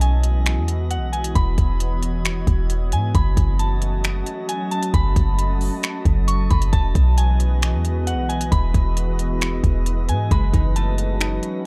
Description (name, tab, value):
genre	hip hop, atmospheric cloud-rap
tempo	134 BPM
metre	4/4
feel	half-time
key	unclear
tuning	A4 = 443 Hz
part	soft synth bell	melody	0.0-11.6 s	F#5 to C#6	-32 LUFS	equal	chorus, tape echo
part	glassy FM pad	sustained chords	0.0-11.7 s	E3 to A5	-31 LUFS	equal	ensemble chorus, built-in reverb, sidechain pumping
part	warm 808-style bass	bass	0.0-11.4 s	E1 to G#2	-22 LUFS	equal	none
part	smooth R&B drum kit	drums	0.0-11.5 s	finger snaps, hi-hat, kick drum	-24 LUFS	equal	overdrive
part	drifting glass-harmonics texture	texture	0.0-11.7 s	G#3 to D#5	-40 LUFS	equal	chorus, built-in reverb
part	concert harp	arpeggios	10.3-11.7 s	G#3 to D#4	-33 LUFS	equal	tape echo
room	little or no reverb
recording	dark, warm production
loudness	-20 LUFS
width	mono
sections	0.0-11.7 A section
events	none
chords	0.0 Emaj7; 3.1 F#m69; 6.7 Emaj7; 10.3 F#m69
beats	0.01 0.46 0.91 | 1.36 1.80 2.25 2.70 | 3.15 3.60 4.04 4.49 | 4.94 5.39 5.83 6.28 | 6.73 7.18 7.62 8.07 | 8.52 8.97 9.42 9.86 | 10.31 10.76 11.21 11.65